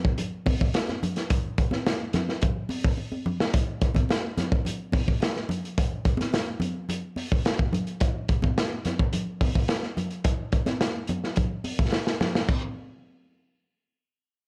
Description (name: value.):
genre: funk.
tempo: 107 BPM.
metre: 4/4.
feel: straight.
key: none.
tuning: none.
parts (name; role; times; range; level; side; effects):
crunchy breakbeat drum kit; drums; 0.0-12.6 s; crash cymbal, hi-hat, kick drum, snare drum; -27 LUFS; equal; none.
congas; percussion; 0.2-12.7 s; none; -34 LUFS; equal; none.
room: light reverb, small room ambience.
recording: cassette tape.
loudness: -27 LUFS.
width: mono.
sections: 0.0-3.5 A section; 3.5-12.5 B section; 12.5-14.5 C section.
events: drum fill 3.0-3.5, 11.9-12.5.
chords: none.